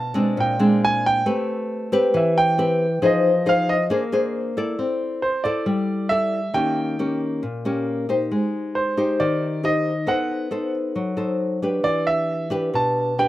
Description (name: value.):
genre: bossa nova.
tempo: 136 BPM.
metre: 4/4.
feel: straight.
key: unclear.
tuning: A4 = 440 Hz.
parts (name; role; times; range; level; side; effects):
warm concert grand piano; melody; 0.0-13.3 s; C5 to A5; -22 LUFS; right 2 dB; slapback echo.
nylon-string guitar; accompaniment; 0.0-13.3 s; Bb2 to D5; -21 LUFS; left 1 dB; none.
room: little or no reverb.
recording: recorded outdoors, with no room sound.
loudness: -19 LUFS.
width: side -15 dB against mid.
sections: 0.0-4.8 A section; 4.8-13.3 B section.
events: grand piano solo 0.0-4.8.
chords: 0.4 Bb9; 1.3 Am9; 3.0 Fm7; 3.9 Bb9; 4.8 C69; 6.5 Eb7; 8.3 Abmaj7; 10.1 B7b9; 11.8 Em7.